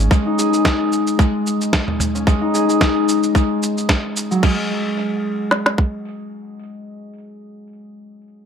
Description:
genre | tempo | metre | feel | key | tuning
organic downtempo | 111 BPM | 4/4 | swing 55% on 16ths | unclear | A4 = 440 Hz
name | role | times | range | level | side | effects
concert harp | arpeggios | 0.0-7.9 s | F#3 to G#4 | -19 LUFS | left 2 dB | dub echo
dusty soul sampler-style drum kit | drums | 0.1-4.5 s | crash cymbal, shaker, snare drum, toms | -22 LUFS | right 1 dB | tape echo
organic electronic drum kit | drums | 0.1-5.9 s | kick drum, snare drum | -16 LUFS | right 1 dB | overdrive
room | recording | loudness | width
moderate spring reverb, RT60 1.3 s | echo-heavy mix | -16 LUFS | side -7 dB against mid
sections
0.0-4.4 A section; 4.4-8.5 B section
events
none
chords
0.0 G#5; 4.4 N.C.

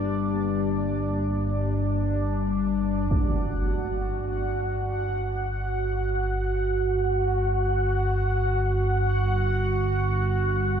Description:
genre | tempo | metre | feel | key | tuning
dark ambient drone | free time | none | none | G harmonic minor | A4 = 440 Hz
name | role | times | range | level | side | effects
granular cloud pad | sustained chords | 0.0-3.1 s | Bb3 to D5 | -40 LUFS | left 2 dB | none
analog drone | drone | 0.0-10.8 s | G1 to G2 | -26 LUFS | left 1 dB | chorus
bubbling stepped-filter texture | texture | 0.0-10.8 s | D4 to F#5 | -27 LUFS | right 3 dB | chorus, built-in reverb, shimmer reverb
impact | percussion | 3.1-3.3 s | none | -28 LUFS | equal | low-pass filter on sfx
room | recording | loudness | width
wet huge ambient reverb, RT60 7.2 s | dark, warm production | -23 LUFS | side -8 dB against mid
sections
0.0-3.1 A section; 3.1-10.8 B section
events
filter sweep on synth drone 3.1-10.8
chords
0.0 Gm; 3.1 N.C.

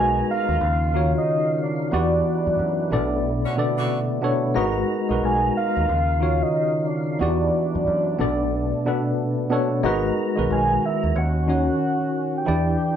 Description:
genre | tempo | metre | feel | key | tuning
R&B | 91 BPM | 4/4 | swing 63% on 16ths | unclear | A4 = 439 Hz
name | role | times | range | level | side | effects
soft octave-layered synth lead | melody | 0.0-13.0 s | D5 to G#5 | -24 LUFS | right 1 dB | chorus
mellow tine electric piano | accompaniment | 0.0-13.0 s | B2 to D5 | -22 LUFS | left 1 dB | medium stereo tremolo
percussive tonewheel organ | sustained chords | 0.0-13.0 s | C#3 to A#5 | -31 LUFS | right 2 dB | chorus vibrato, slow rotary speaker
deep dub fingered electric bass | bass | 0.0-12.7 s | G#1 to F#2 | -25 LUFS | equal | none
edgy saxophone section | stabs | 3.4-4.0 s | C#3 to F#4 | -30 LUFS | right 2 dB | none
room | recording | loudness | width
wet studio reverb, RT60 0.6 s | band playing live in one room | -20 LUFS | side -9 dB against mid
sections
0.0-13.0 A section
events
band accent 1.9-4.6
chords
0.0 G#m9; 0.6 D#m9; 1.9 Em9; 2.9 Bm9; 4.6 G#m9; 5.9 D#m9; 7.2 Em9; 8.2 Bm9; 9.8 G#m9; 11.2 D#m7

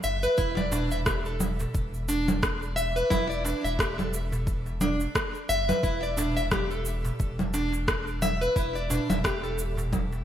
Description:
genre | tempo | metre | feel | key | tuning
organic downtempo | 88 BPM | 4/4 | swing 57% on 16ths | E minor | A4 = 441 Hz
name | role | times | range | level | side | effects
nylon-string guitar | arpeggios | 0.0-9.6 s | D4 to E5 | -29 LUFS | equal | digital delay, shimmer reverb
warm sub bass | bass | 0.0-10.2 s | E1 to F#1 | -32 LUFS | equal | sidechain pumping
electronic shaker, congas and rim click | drums | 0.0-10.2 s | none | -30 LUFS | right 1 dB | gated reverb
electronic kick drum | drums | 0.4-10.1 s | none | -31 LUFS | equal | overdrive
darbuka | percussion | 0.7-10.2 s | none | -37 LUFS | right 1 dB | none
room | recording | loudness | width
moderate lush hall reverb, RT60 1.9 s, digital ambience | bright 1980s-style digital production | -25 LUFS | side -10 dB against mid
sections
0.0-10.2 A section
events
none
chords
none

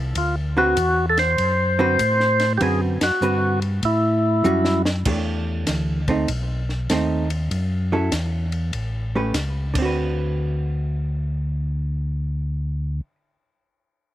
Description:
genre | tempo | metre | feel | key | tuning
soul jazz organ trio | 98 BPM | 4/4 | swing 66% on 8ths | D mixolydian | A4 = 440 Hz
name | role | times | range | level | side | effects
mellow tonewheel organ | bass | 0.0-13.0 s | A1 to A2 | -23 LUFS | equal | overdrive, chorus vibrato, slow rotary speaker
percussive tonewheel organ | melody | 0.2-4.8 s | E4 to C5 | -20 LUFS | equal | slow rotary speaker
compact cocktail drum kit | drums | 0.2-9.8 s | crash cymbal, hi-hat, kick drum, ride cymbal, snare drum | -30 LUFS | equal | none
vintage hollow-body jazz guitar | accompaniment | 0.6-13.2 s | D3 to B4 | -24 LUFS | right 2 dB | slapback echo
room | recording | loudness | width
little or no reverb | recorded outdoors, with no room sound | -19 LUFS | side -13 dB against mid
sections
0.0-5.1 A section; 5.1-10.0 B section; 10.0-12.4 C section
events
band accent 2.9-3.2; drum fill 4.4-5.1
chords
0.2 D13; 3.8 A6; 5.1 Em7; 6.3 B7b9; 7.5 F#m7; 8.7 A9; 9.7 D6

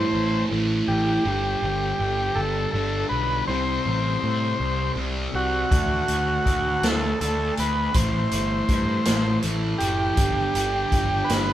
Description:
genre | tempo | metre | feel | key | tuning
psychedelic rock | 54 BPM (dotted quarters) | 6/8 | straight | A dorian | A4 = 440 Hz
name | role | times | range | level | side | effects
combo organ | melody | 0.0-11.5 s | F#4 to C5 | -25 LUFS | equal | none
fuzz guitar | riff | 0.0-11.5 s | G2 to D4 | -26 LUFS | right 1 dB | distortion, phaser
fuzz picked electric bass | bass | 0.0-11.5 s | F#1 to A2 | -27 LUFS | equal | overdrive
vintage drum kit | drums | 5.7-11.5 s | hi-hat, kick drum, snare drum | -25 LUFS | equal | none
room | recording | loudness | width
moderate large studio reverb, RT60 0.9 s | band playing live in one room | -21 LUFS | side -12 dB against mid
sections
0.0-11.5 A section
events
none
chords
0.0 Am; 1.2 G; 3.5 C5; 5.7 D; 7.9 Am; 10.2 G

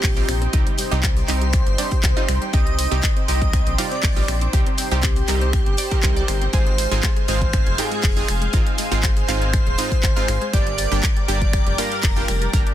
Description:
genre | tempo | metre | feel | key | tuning
progressive house | 120 BPM | 4/4 | straight | C minor | A4 = 440 Hz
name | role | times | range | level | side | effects
warm velvety synth lead | melody | 0.0-12.4 s | G4 to Eb5 | -28 LUFS | equal | chorus, digital delay
airy dreamy lead | second line | 0.0-12.4 s | G4 to Eb5 | -33 LUFS | equal | chorus, sidechain pumping, tape echo
lush unison pad | sustained chords | 0.0-12.7 s | Eb4 to D6 | -31 LUFS | right 1 dB | chorus, phaser, sidechain pumping
analog pluck | arpeggios | 0.0-12.7 s | G3 to D5 | -31 LUFS | equal | chorus, sidechain pumping, tape echo
round analog bass | bass | 0.0-12.6 s | Eb1 to C2 | -23 LUFS | equal | sidechain pumping
electronic kick drum | drums | 0.0-12.6 s | none | -20 LUFS | equal | none
pop drum kit | drums | 0.0-12.7 s | finger snaps, handclaps, hi-hat | -26 LUFS | equal | soft clipping on snare
warm soul drum kit | drums | 0.0-12.7 s | hi-hat, snare drum | -36 LUFS | left 4 dB | none
impact | sound effects | 0.0-0.5 s | none | barely audible | none | none
supersaw stab | stabs | 0.2-12.7 s | G2 to Bb4 | -28 LUFS | right 4 dB | sidechain pumping, tape echo
room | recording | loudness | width
little or no reverb | dense, heavily limited modern master | -17 LUFS | side -12 dB against mid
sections
0.0-12.7 A section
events
impact 0.0-0.5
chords
0.0 Cm; 6.5 Ab6; 10.5 Gm

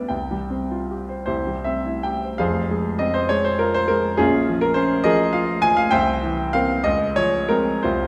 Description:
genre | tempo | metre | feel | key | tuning
classical, romantic character piece for solo piano | 46-70 BPM (dotted quarters) | 6/8 | rubato | F minor | A4 = 440 Hz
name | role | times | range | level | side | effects
clear baby grand piano | solo | 0.0-8.1 s | F1 to Ab5 | -21 LUFS | equal | none
room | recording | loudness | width
wet recital hall reverb, RT60 1.5 s | heard from further back in the room | -21 LUFS | mono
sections
0.0-2.4 A section; 2.4-8.1 B section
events
none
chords
0.1 Csus4; 1.3 C; 2.4 Fm; 4.2 Bbm7; 5.9 C7; 6.9 Dbmaj7

